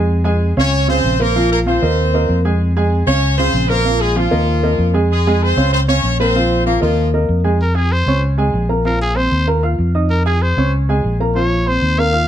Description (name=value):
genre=latin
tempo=192 BPM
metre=4/4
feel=straight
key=F minor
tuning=A4 = 436 Hz
part: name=warm upright piano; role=accompaniment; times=0.0-12.3 s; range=Db3 to Ab6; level=-18 LUFS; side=right 1 dB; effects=none
part: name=fingered electric bass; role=bass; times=0.0-12.3 s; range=Bb1 to F2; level=-16 LUFS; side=equal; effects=none
part: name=clear horn section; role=melody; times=0.6-7.1 s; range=F3 to Db5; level=-18 LUFS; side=right 1 dB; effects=none
part: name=growling trumpet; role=melody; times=7.6-12.3 s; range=Ab4 to F5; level=-19 LUFS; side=equal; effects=none
room=light reverb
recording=none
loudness=-13 LUFS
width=side -10 dB against mid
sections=0.0-7.6 A section; 7.6-12.3 B section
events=trumpet solo 7.6-12.3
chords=0.1 Fm; 0.7 Db; 1.4 Bbsus2; 2.0 Ebsus2; 2.6 Fm; 3.2 Db; 3.9 Bb5; 4.5 Ebsus2; 5.1 Fm; 5.7 Db; 6.4 Bbsus2; 7.0 Ebsus2; 7.6 Fm; 8.2 Db5; 8.9 Bbsus2; 9.5 Ebsus2; 10.1 Fm7; 10.7 Db5; 11.4 Bbmadd9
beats=| 0.10 0.41 0.73 1.04 | 1.35 1.67 1.98 2.29 | 2.60 2.92 3.23 3.54 | 3.85 4.17 4.48 4.79 | 5.10 5.42 5.73 6.04 | 6.35 6.67 6.98 7.29 | 7.60 7.92 8.23 8.54 | 8.85 9.17 9.48 9.79 | 10.11 10.42 10.73 11.04 | 11.36 11.67 11.98